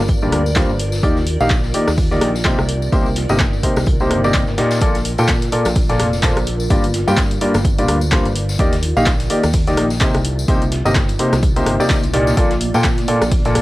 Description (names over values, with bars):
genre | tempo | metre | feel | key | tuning
piano house | 127 BPM | 4/4 | swing 57% on 16ths | unclear | A4 = 440 Hz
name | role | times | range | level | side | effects
fingered electric bass | bass | 0.0-13.6 s | F1 to Bb2 | -21 LUFS | equal | sidechain pumping
granular cloud pad | texture | 0.0-13.6 s | Bb3 to D5 | -28 LUFS | right 1 dB | built-in reverb, sidechain pumping, cassette tape
dusty soul sampler-style drum kit | drums | 0.1-13.6 s | hi-hat, snare drum, tambourine | -33 LUFS | right 1 dB | none
electronic kick drum | drums | 0.1-13.4 s | none | -18 LUFS | equal | overdrive, cassette tape
tambourine | percussion | 0.1-13.5 s | none | -33 LUFS | left 4 dB | none
warm baby grand piano | riff | 0.2-13.6 s | G2 to G5 | -18 LUFS | equal | sidechain pumping, low-pass filter, cassette tape, analog delay
punchy analog drum machine | drums | 0.3-13.6 s | handclaps, hi-hat, rim click | -23 LUFS | equal | overdrive, cassette tape
room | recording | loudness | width
digital ambience | home recording on cassette | -14 LUFS | side -18 dB against mid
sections
0.0-13.6 A section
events
none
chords
0.0 Gm7; 1.0 Ebmaj7; 2.7 Cm7; 4.8 Bbmaj7; 6.7 Gm7; 8.6 Ebmaj7; 10.2 Cm7; 12.4 Bbmaj7